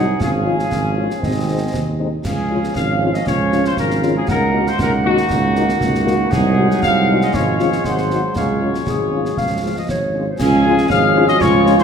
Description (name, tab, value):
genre	military-style march for wind band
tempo	118 BPM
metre	2/4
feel	straight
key	Db major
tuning	A4 = 438 Hz
part	mellow trumpet section	melody	0.0-11.8 s	Gb4 to F5	-22 LUFS	left 1 dB	none
part	mellow woodwind section	second line	0.0-11.8 s	C4 to Gb5	-22 LUFS	left 1 dB	none
part	mellow French horn section	accompaniment	0.0-11.8 s	Ab3 to Gb4	-23 LUFS	left 5 dB	none
part	clear trombone section	sustained chords	0.0-11.8 s	Eb3 to Eb4	-24 LUFS	right 2 dB	none
part	mellow tuba	bass	0.0-11.8 s	Ab1 to Eb2	-20 LUFS	right 3 dB	none
part	concert snare drum, concert bass drum and clash cymbals	drums	0.2-11.8 s	none	-25 LUFS	left 1 dB	none
part	clear euphonium	second line	10.4-11.8 s	Db4 to F4	-20 LUFS	right 5 dB	none
part	wooden piccolo	second line	10.4-11.8 s	Ab5 to F6	-19 LUFS	left 5 dB	none
room	moderate scoring stage reverb, RT60 1.8 s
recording	minimal, uncompressed stereo recording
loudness	-14 LUFS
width	side -7 dB against mid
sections	0.0-10.4 A section; 10.4-11.8 A section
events	none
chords	0.2 Db/Ab; 1.2 Ab; 2.2 Db; 4.3 Ebm7/Db; 6.3 Ab7/C; 7.3 Db/Ab; 7.9 Ab7; 8.4 Db